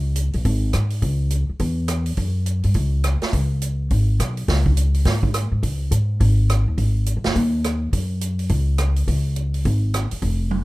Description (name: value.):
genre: jazz, small-group swing and bop.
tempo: 209 BPM.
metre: 4/4.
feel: swing 62% on 8ths.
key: C# minor.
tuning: A4 = 440 Hz.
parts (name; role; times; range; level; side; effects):
upright bass; bass; 0.0-10.6 s; F1 to G#2; -19 LUFS; equal; none.
swinging big-band drum kit; drums; 0.2-10.6 s; hi-hat, kick drum, rim click, snare drum, toms; -26 LUFS; right 2 dB; none.
room: little or no reverb.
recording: none.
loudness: -18 LUFS.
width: side -19 dB against mid.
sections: 0.0-10.6 A section.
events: none.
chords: none.